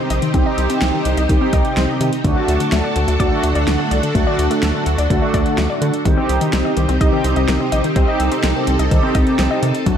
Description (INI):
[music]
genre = synth-pop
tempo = 126 BPM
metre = 4/4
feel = straight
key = unclear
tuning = A4 = 441 Hz
[part]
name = mellow synth brass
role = accompaniment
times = 0.0-10.0 s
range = A3 to G4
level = -20 LUFS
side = right 2 dB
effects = chorus
[part]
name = string machine, full ensemble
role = sustained chords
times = 0.0-10.0 s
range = C3 to A4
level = -22 LUFS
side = equal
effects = ensemble chorus
[part]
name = wide unison pluck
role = arpeggios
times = 0.0-9.9 s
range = D3 to Eb5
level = -24 LUFS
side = left 5 dB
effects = tape echo
[part]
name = rubbery square bass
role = bass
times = 0.1-10.0 s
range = Bb1 to D3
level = -20 LUFS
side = equal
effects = none
[part]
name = deep house drum kit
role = drums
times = 0.1-10.0 s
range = hi-hat, kick drum, snare drum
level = -20 LUFS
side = equal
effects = gated reverb
[sound]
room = light reverb, digital ambience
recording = none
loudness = -14 LUFS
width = side -8 dB against mid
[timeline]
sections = 0.0-10.0 A section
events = none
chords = 0.0 Cm; 2.2 D; 6.1 Cm